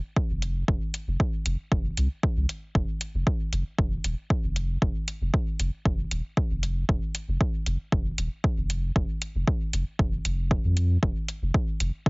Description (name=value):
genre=dub techno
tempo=116 BPM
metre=4/4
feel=straight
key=unclear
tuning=A4 = 445 Hz
part: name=electronic kick drum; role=drums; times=0.2-12.1 s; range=none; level=-26 LUFS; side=equal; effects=overdrive
part: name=pure sine sub bass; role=bass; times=0.3-12.1 s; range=Eb1 to F2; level=-27 LUFS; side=equal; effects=sidechain pumping
part: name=electronic hi-hat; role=drums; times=0.4-11.9 s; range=none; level=-31 LUFS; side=equal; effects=overdrive
room=little or no reverb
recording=heavily compressed radio sound, multiband compression, nothing above 7.7 kHz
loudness=-25 LUFS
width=side -37 dB against mid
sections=0.0-12.1 A section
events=none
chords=none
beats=0.17 | 0.68 1.20 1.72 2.23 | 2.75 3.27 3.79 4.30 | 4.82 5.34 5.85 6.37 | 6.89 7.41 7.92 8.44 | 8.96 9.47 9.99 10.51 | 11.03 11.54 12.06